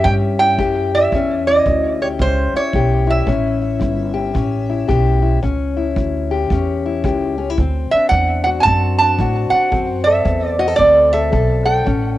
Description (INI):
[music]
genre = acoustic country blues, solo or duo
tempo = 112 BPM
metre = 4/4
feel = swing 63% on 8ths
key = A mixolydian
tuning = A4 = 441 Hz
[part]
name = lap resonator guitar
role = melody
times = 0.0-12.2 s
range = C5 to A5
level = -16 LUFS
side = right 2 dB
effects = cassette tape
[part]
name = fingerpicked old ladder-braced acoustic guitar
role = accompaniment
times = 0.0-12.2 s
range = A2 to A4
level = -20 LUFS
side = left 6 dB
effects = cassette tape
[part]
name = upright bass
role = bass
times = 0.0-12.2 s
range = G1 to A2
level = -20 LUFS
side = right 1 dB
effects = none
[part]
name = kick drum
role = drums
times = 0.1-12.0 s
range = none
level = -24 LUFS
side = right 1 dB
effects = none
[sound]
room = small room ambience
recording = home recording on cassette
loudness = -14 LUFS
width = side -15 dB against mid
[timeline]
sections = 0.0-12.2 A section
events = none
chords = 0.0 A7; 7.6 D7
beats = 0.04 0.58 | 1.11 1.65 2.18 2.72 | 3.25 3.79 4.33 4.87 | 5.40 5.94 6.48 7.02 | 7.55 8.09 8.63 9.17 | 9.71 10.24 10.78 11.32 | 11.85